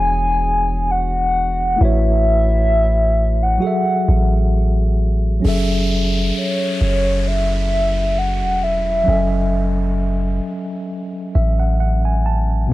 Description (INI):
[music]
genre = contemporary R&B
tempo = 66 BPM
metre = 4/4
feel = swing 54% on 16ths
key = F# minor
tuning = A4 = 440 Hz
[part]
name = hollow clarinet-like synth lead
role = melody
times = 0.0-10.0 s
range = C#5 to G#5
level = -19 LUFS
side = equal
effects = chorus
[part]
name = mellow tine electric piano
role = accompaniment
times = 0.0-12.7 s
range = B2 to A5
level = -22 LUFS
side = equal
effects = medium stereo tremolo
[part]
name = long sustained 808-style bass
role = bass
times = 0.0-12.7 s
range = E1 to A1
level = -18 LUFS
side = equal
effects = none
[part]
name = soft synth bell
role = texture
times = 3.6-4.6 s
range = F#5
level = -35 LUFS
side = right 1 dB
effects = none
[part]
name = downlifter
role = sound effects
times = 5.4-12.7 s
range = none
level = -29 LUFS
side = equal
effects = none
[sound]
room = little or no reverb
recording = dry, gritty hardware recording, cassette tape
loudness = -15 LUFS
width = side -17 dB against mid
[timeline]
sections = 0.0-5.4 A section; 5.4-12.7 B section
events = tine electric piano fill 10.9-12.7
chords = 0.0 E13; 1.8 A69; 3.6 F#m9